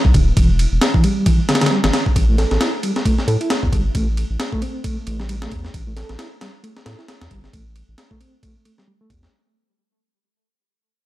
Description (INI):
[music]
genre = breakbeat, breaks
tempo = 134 BPM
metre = 4/4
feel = swing 58% on 16ths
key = unclear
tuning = A4 = 440 Hz
[part]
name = saturated sub bass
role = bass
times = 0.0-9.3 s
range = D1 to A2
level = -20 LUFS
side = equal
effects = none
[part]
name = breakbeat sampler-style drum kit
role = drums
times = 0.0-9.3 s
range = kick drum, ride cymbal, snare drum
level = -18 LUFS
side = equal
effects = small room reverb
[part]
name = reed electric piano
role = riff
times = 0.1-9.1 s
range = D3 to A4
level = -23 LUFS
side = right 1 dB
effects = fast tremolo, low-pass filter, dub echo
[sound]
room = light reverb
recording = dark, warm production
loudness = -16 LUFS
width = side -15 dB against mid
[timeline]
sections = 0.0-9.3 A section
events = fade-out 0.0-9.3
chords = 0.0 Em7; 2.2 A5